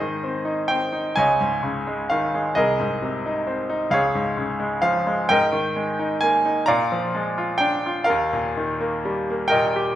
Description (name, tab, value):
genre	classical, lyrical solo piano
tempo	43 BPM (dotted quarters)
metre	6/8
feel	rubato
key	Ab major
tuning	A4 = 440 Hz
part	bright grand piano	solo	0.0-10.0 s	C2 to Bb5	-20 LUFS	equal	none
room	wet recital hall reverb, RT60 1.5 s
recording	recorded in a church or concert hall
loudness	-20 LUFS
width	side -12 dB against mid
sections	0.0-10.0 A section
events	none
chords	0.0 Ab; 1.2 Dbsus2; 2.6 Abadd9/C; 3.9 Db; 5.3 Absus2; 6.7 Bb7; 8.1 Eb